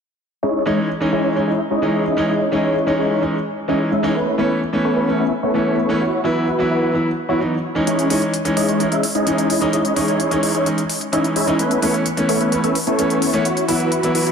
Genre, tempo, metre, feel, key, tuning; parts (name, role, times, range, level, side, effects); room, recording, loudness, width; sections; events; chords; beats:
EDM, festival progressive house; 129 BPM; 4/4; straight; C# minor; A4 = 439 Hz
big supersaw lead; riff; 0.4-14.3 s; G#3 to E5; -19 LUFS; equal; phaser, low-pass filter, dub echo
warm concert grand piano; accompaniment; 0.7-14.3 s; E3 to E4; -20 LUFS; equal; dub echo
electronic hi-hat; drums; 7.9-14.3 s; -26 LUFS; left 2 dB; overdrive, studio reverb
moderate lush hall reverb, RT60 2.1 s; dense, heavily limited modern master; -16 LUFS; side -6 dB against mid
0.4-14.3 A section
0.4 C#madd9; 4.2 Aadd9; 6.0 Bsus4; 7.9 C#madd9; 11.6 Aadd9; 13.5 Bsus4
| 0.43 0.90 1.36 1.82 | 2.29 2.75 3.22 3.69 | 4.15 4.62 5.08 5.55 | 6.01 6.48 6.94 7.41 | 7.87 8.34 8.80 9.27 | 9.73 10.20 10.66 11.13 | 11.59 12.06 12.52 12.99 | 13.45 13.92